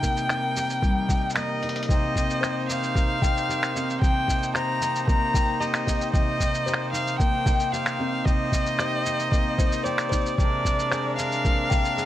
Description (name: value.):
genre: folktronica.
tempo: 113 BPM.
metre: 4/4.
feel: straight.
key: C minor.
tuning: A4 = 438 Hz.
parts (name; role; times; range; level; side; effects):
rich violin; melody; 0.0-12.1 s; D5 to Bb5; -27 LUFS; left 1 dB; ping-pong delay.
accordion; sustained chords; 0.0-12.1 s; C3 to C5; -32 LUFS; right 4 dB; none.
fingerpicked twelve-string acoustic guitar; arpeggios; 0.0-12.1 s; C3 to Ab4; -30 LUFS; left 1 dB; ping-pong delay.
electronic kick drum; drums; 0.0-11.8 s; none; -23 LUFS; equal; none.
lo-fi sampler-style drum kit; drums; 0.0-12.1 s; cabasa, finger snaps, hi-hat; -30 LUFS; equal; none.
buzzing kalimba; second line; 2.4-12.0 s; C4 to G5; -33 LUFS; left 5 dB; vintage 12-bit sampler grit, tape echo.
room: light reverb.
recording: vinyl crackle.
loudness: -22 LUFS.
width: side -13 dB against mid.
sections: 0.0-1.9 A section; 1.9-12.1 B section.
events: break 1.4-1.9; drum fill 1.6.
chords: 0.0 Cm7; 10.4 Bb7/C.